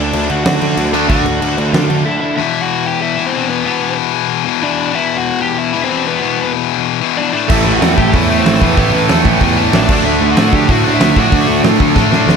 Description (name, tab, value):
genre	punk rock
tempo	188 BPM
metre	4/4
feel	straight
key	unclear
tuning	A4 = 440 Hz
part	smooth overdriven lead guitar	melody	0.0-11.6 s	B3 to G5	-20 LUFS	equal	tape echo
part	distorted electric guitar	riff	0.0-2.4, 7.5-12.4 s	A2 to D4	-18 LUFS	right 1 dB	distortion
part	fuzz picked electric bass	bass	0.0-2.1, 7.5-12.4 s	A1 to D3	-17 LUFS	right 1 dB	overdrive
part	big rock drum kit	drums	0.1-2.0, 7.5-12.4 s	crash cymbal, hi-hat, kick drum, snare drum	-16 LUFS	right 1 dB	none
part	distorted electric guitar	riff	0.9-12.4 s	E2 to D4	-16 LUFS	left 16 dB	overdrive
part	overdriven electric guitar	riff	0.9-1.2, 7.5-12.4 s	A2 to D4	-16 LUFS	right 18 dB	none
room	little or no reverb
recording	none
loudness	-11 LUFS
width	side -6 dB against mid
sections	0.0-2.4 A section; 2.4-12.4 B section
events	half time 0.0-2.4; break 2.1-2.4; drum fill 12.0-12.4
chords	0.0 D; 2.4 E5; 7.3 A5; 9.9 D